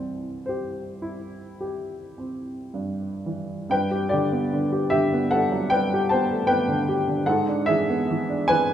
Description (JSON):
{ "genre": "classical, romantic nocturne for solo piano", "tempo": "34-53 BPM (dotted quarters)", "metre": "9/8", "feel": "rubato", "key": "C major, G major from 3.7 s", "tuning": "A4 = 440 Hz", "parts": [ { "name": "warm upright piano", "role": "solo", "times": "0.0-8.7 s", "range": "C2 to A5", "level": "-22 LUFS", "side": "equal", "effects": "none" } ], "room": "wet recital hall reverb, RT60 1.5 s", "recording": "minimal, uncompressed stereo recording", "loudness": "-21 LUFS", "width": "side -10 dB against mid", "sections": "0.0-3.7 A section; 3.7-8.7 B section", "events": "none", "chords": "0.0 C; 3.7 G; 7.3 E7/G#" }